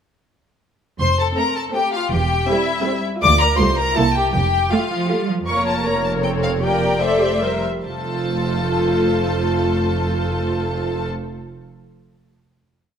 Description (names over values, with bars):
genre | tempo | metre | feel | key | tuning
quick classical-period movement for string orchestra | 139-164 BPM | 3/4 | straight | F major | A4 = 441 Hz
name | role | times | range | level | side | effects
bright studio violin section | melody | 1.0-11.1 s | E5 to D6 | -22 LUFS | left 3 dB | none
rich studio violin section | second line | 1.0-11.1 s | E4 to D5 | -24 LUFS | left 4 dB | none
rich studio cello section | bass | 1.0-11.1 s | C2 to A3 | -25 LUFS | right 2 dB | none
warm studio double bass section | bass | 1.0-11.1 s | E1 to D2 | -24 LUFS | right 3 dB | none
warm studio viola section | accompaniment | 1.4-11.1 s | G3 to Bb4 | -22 LUFS | right 1 dB | none
room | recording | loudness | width
moderate concert hall reverb, RT60 1.8 s | close, detailed microphones | -17 LUFS | side -8 dB against mid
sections
1.0-5.5 A section; 5.5-7.9 coda; 7.9-10.4 final chord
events
slowing down 4.9-7.9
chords
1.0 F; 2.1 C/E; 3.2 Dm; 3.6 F/C; 4.0 C7; 4.3 F; 5.5 Bbm/F; 6.6 C7/F; 7.9 F